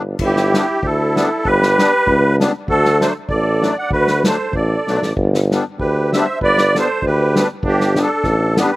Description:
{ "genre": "alpine folk, alpine dance band", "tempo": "97 BPM", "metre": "2/4", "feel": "swing 54% on 8ths, rubato", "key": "G major", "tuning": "A4 = 440 Hz", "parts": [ { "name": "musette accordion", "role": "accompaniment", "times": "0.0-8.7 s", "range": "F#3 to D4", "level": "-21 LUFS", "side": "left 3 dB", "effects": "slapback echo" }, { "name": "clear tuba", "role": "bass", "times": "0.0-8.6 s", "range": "G1 to D2", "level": "-18 LUFS", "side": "equal", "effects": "none" }, { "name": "musette accordion", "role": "melody", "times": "0.2-8.8 s", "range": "G4 to F#5", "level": "-17 LUFS", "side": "equal", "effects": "none" }, { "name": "mellow trumpet", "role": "second line", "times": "0.2-8.8 s", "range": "D4 to D5", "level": "-23 LUFS", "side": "right 3 dB", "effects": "slapback echo" }, { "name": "unplugged drum kit", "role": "drums", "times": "0.2-8.7 s", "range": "crash cymbal, kick drum, snare drum", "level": "-22 LUFS", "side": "equal", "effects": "none" } ], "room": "little or no reverb", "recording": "recorded outdoors, with no room sound", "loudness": "-14 LUFS", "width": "side -18 dB against mid", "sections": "0.2-8.8 A section", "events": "drum fill 4.8-5.2", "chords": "0.2 G6; 2.7 D; 5.2 G", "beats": "| 0.18 0.82 | 1.45 2.06 | 2.67 3.28 | 3.90 4.53 | 5.16 5.79 | 6.41 7.02 | 7.63 8.24" }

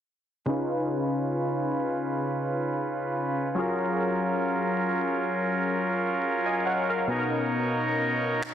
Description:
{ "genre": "contemporary R&B", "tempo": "68 BPM", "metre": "4/4", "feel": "swing 54% on 16ths", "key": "unclear", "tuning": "A4 = 439 Hz", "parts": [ { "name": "warm analog keys", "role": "accompaniment", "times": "0.5-8.5 s", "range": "B2 to G#5", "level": "-28 LUFS", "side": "left 1 dB", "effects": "chorus, low-pass filter" }, { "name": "accordion", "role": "sustained chords", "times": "0.5-8.5 s", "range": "B2 to C#5", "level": "-28 LUFS", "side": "right 2 dB", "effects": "low-pass filter" }, { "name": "electronic finger snaps", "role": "drums", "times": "8.4-8.5 s", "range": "none", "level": "-32 LUFS", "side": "equal", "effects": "soft clipping on snare" } ], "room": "light reverb, digital ambience", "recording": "dense, heavily limited modern master", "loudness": "-25 LUFS", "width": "side -9 dB against mid", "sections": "0.5-8.5 A section", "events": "filter sweep 0.5-8.5", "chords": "0.5 C#7; 3.6 F#maj7; 7.1 Bmaj9", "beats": "| 0.47 1.35 2.24 3.12 | 4.00 4.88 5.77 6.65 | 7.53 8.41" }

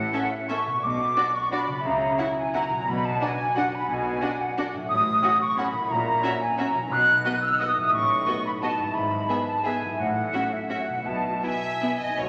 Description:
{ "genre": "classical, orchestral ballroom waltz", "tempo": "153-192 BPM", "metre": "3/4", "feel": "rubato", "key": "E major from 4.9 s", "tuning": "A4 = 439 Hz", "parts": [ { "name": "small flute group", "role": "second line", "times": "0.0-12.3 s", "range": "E5 to F#6", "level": "-26 LUFS", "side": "equal", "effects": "none" }, { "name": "concert harp", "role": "arpeggios", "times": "0.0-12.3 s", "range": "G#2 to E5", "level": "-36 LUFS", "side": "equal", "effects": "none" }, { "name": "clear chamber double bass section", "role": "bass", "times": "0.0-12.3 s", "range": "G#1 to C#2", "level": "-40 LUFS", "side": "equal", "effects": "none" }, { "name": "rich symphonic cello section", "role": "bass", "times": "0.0-12.3 s", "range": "G#2 to C#3", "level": "-35 LUFS", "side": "equal", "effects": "none" }, { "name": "rich symphonic violin section", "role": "melody", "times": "0.1-12.3 s", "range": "C#5 to F#5", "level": "-38 LUFS", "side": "equal", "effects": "none" }, { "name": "rich symphonic violin section", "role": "second line", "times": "0.1-11.9 s", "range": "E4 to A4", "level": "-39 LUFS", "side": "equal", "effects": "none" }, { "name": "clear symphonic viola section", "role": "accompaniment", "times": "0.1-11.9 s", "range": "B3 to E4", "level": "-36 LUFS", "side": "equal", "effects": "none" } ], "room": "wet scoring stage reverb, RT60 1.9 s", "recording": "none", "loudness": "-25 LUFS", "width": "mono", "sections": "0.0-12.3 A section", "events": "none", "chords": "0.0 A; 0.8 Bm; 1.9 F#7/C#; 2.9 Bm; 4.9 F#m/A; 5.9 F#7/A#; 6.9 B; 7.9 B7/A; 9.0 E/G#; 10.0 F#m7/A; 11.1 E/B", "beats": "0.14 0.49 | 0.83 1.17 1.52 | 1.85 2.19 2.54 | 2.87 3.21 3.56 | 3.89 4.22 4.57 | 4.90 5.23 5.58 | 5.91 6.24 6.58 | 6.91 7.25 7.60 | 7.93 8.27 8.62 | 8.95 9.29 9.65 | 9.99 10.34 10.71 | 11.06 11.44 11.82 | 12.18" }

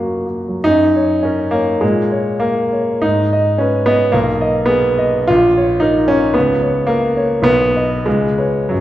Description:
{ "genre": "classical, romantic character piece for solo piano", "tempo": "64-116 BPM", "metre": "2/4", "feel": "rubato", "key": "F# major", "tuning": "A4 = 440 Hz", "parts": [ { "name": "warm grand piano", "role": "solo", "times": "0.0-8.8 s", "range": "A#1 to F#5", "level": "-13 LUFS", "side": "equal", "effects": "none" } ], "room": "wet recital hall reverb, RT60 1.4 s", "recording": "heard from further back in the room", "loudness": "-13 LUFS", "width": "side -14 dB against mid", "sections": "0.7-8.8 A section", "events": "none", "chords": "0.0 F#; 1.8 A#m7; 3.0 G#m; 4.1 G#m/B; 5.3 A#m; 6.4 A#m/C#; 7.5 B; 8.1 C#5", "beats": "| 0.65 1.24 | 1.83 2.42 | 3.04 3.60 | 4.14 4.68 | 5.29 5.83 | 6.35 6.89 | 7.46 8.06 | 8.71" }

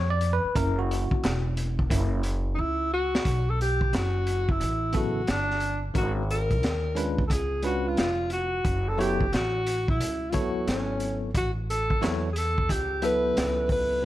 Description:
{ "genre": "hip hop, jazz-hop", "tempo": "89 BPM", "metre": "4/4", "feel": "swing 65% on 16ths", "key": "B minor", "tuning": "A4 = 438 Hz", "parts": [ { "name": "barky tine electric piano", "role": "accompaniment", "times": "0.0-14.1 s", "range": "C#3 to E5", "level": "-30 LUFS", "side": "left 1 dB", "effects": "medium stereo tremolo" }, { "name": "upright bass", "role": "bass", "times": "0.0-14.0 s", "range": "E1 to E#2", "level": "-29 LUFS", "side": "equal", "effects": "none" }, { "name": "crunchy breakbeat drum kit", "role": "drums", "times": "0.2-13.9 s", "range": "hi-hat, kick drum, snare drum", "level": "-29 LUFS", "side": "equal", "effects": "none" }, { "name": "mellow alto saxophone", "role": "melody", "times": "2.5-14.1 s", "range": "C#4 to B4", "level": "-28 LUFS", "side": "equal", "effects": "none" } ], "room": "small room ambience", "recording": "none", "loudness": "-24 LUFS", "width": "side -14 dB against mid", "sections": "0.0-3.3 A section; 3.3-14.1 B section", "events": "tine electric piano solo 0.0-3.3; drum fill 2.6-3.3", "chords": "0.0 E7(no3) (rootless); 0.6 F#7; 3.3 B5; 6.0 G#m7; 7.3 C#7b9; 8.6 F#m7; 11.3 Aadd9", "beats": "| 0.56 1.23 1.91 2.58 | 3.25 3.93 4.60 5.28 | 5.95 6.62 7.30 7.97 | 8.65 9.32 9.99 10.67 | 11.34 12.02 12.69 13.37 | 14.04" }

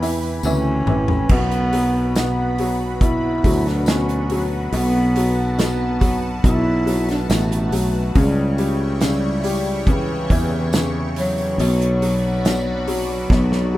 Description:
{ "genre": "pop ballad", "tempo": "70 BPM", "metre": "4/4", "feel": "straight", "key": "B minor", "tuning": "A4 = 439 Hz", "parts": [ { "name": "mellow bass clarinet", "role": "melody", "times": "0.0-13.8 s", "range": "C#3 to E4", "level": "-23 LUFS", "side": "equal", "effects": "none" }, { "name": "bright upright piano", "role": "accompaniment", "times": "0.0-13.8 s", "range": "B2 to G3", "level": "-23 LUFS", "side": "left 2 dB", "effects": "none" }, { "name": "lush unison pad", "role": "sustained chords", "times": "0.0-13.8 s", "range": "E4 to C#6", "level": "-31 LUFS", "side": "equal", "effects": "chorus, phaser" }, { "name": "fretless electric bass", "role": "bass", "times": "0.0-13.8 s", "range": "A1 to E2", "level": "-22 LUFS", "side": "equal", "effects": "none" }, { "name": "loose indie drum kit", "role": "drums", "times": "0.0-13.7 s", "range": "crash cymbal, hi-hat, kick drum, snare drum, toms", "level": "-22 LUFS", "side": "equal", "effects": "none" }, { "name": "tambourine", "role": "percussion", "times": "0.4-12.7 s", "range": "none", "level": "-35 LUFS", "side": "left 6 dB", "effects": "none" } ], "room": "small room reverb", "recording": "rough home demo mix", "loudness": "-17 LUFS", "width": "side -16 dB against mid", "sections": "0.0-13.8 A section", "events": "drum fill 0.4-1.3, 13.3-13.8", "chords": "0.0 Em; 1.3 Bm; 8.2 C#dim; 11.6 Bmadd9", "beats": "0.44 | 1.30 2.16 3.02 3.87 | 4.73 5.59 6.44 7.30 | 8.16 9.02 9.87 10.73 | 11.59 12.44 13.30" }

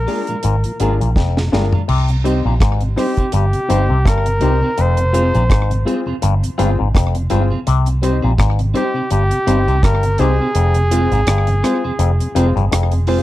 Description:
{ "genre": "roots reggae", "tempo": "83 BPM", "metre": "4/4", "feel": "swing 57% on 16ths", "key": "unclear", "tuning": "A4 = 435 Hz", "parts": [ { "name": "warm flugelhorn", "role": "melody", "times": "0.0-13.1 s", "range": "G4 to C5", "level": "-21 LUFS", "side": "equal", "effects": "dub echo" }, { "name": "vintage muted fingered electric bass", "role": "bass", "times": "0.0-13.2 s", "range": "F1 to C2", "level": "-15 LUFS", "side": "equal", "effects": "none" }, { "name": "clean electric guitar", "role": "accompaniment", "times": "0.1-13.2 s", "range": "Ab3 to C5", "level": "-26 LUFS", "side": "right 6 dB", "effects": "spring reverb, dub echo" }, { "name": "mellow tonewheel organ", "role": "accompaniment", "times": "0.1-13.2 s", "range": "F2 to F4", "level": "-25 LUFS", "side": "left 1 dB", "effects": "slow rotary speaker, slapback echo" }, { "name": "warm upright piano", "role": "stabs", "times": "0.1-13.2 s", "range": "C4 to C5", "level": "-22 LUFS", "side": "left 5 dB", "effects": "none" }, { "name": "deep reggae drum kit", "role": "drums", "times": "0.1-13.2 s", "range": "crash cymbal, hi-hat, kick drum, rim click, snare drum, toms", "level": "-19 LUFS", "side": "equal", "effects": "none" }, { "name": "auto-wah clav", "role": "riff", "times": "0.4-12.9 s", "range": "F2 to C3", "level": "-23 LUFS", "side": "left 10 dB", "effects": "none" } ], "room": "little or no reverb", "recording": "dry, close 1970s-style studio recording", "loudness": "-13 LUFS", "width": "side -15 dB against mid", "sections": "0.0-1.9 A section; 1.9-13.2 B section", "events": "drum fill 1.2-1.9; kick muted 10.6-13.2", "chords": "0.0 Bb7; 1.9 Cm; 4.8 Fm; 7.7 Cm; 10.6 Fm", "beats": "0.44 1.16 | 1.88 2.61 3.33 4.05 | 4.78 5.50 6.22 6.94 | 7.66 8.39 9.11 9.83 | 10.55 11.27 12.00 12.72" }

